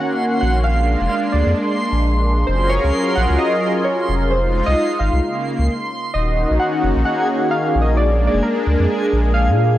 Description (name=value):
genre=IDM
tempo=131 BPM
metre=4/4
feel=swing 56% on 16ths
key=Eb dorian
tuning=A4 = 439 Hz
part: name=warbly lo-fi synth keys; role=melody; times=0.0-9.8 s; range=Bb4 to Gb5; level=-21 LUFS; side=right 1 dB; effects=chorus, tape echo
part: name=warm analog pad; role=sustained chords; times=0.0-9.8 s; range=Db3 to Bb4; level=-20 LUFS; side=equal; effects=chorus
part: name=backwards swelling texture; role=texture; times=0.1-9.8 s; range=Ab4 to C6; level=-26 LUFS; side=equal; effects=built-in reverb
part: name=warm sub bass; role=bass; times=0.4-9.8 s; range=Eb1 to Bb2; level=-17 LUFS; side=equal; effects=none
room=little or no reverb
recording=dry, gritty hardware recording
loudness=-15 LUFS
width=side -14 dB against mid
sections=0.0-6.1 A section; 6.1-9.8 B section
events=stop 5.7-6.1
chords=0.0 Ebm7; 0.7 Bb7; 2.5 Gbmaj7; 4.3 Fm7; 5.2 Db6; 6.1 Ebm7; 8.0 Bb7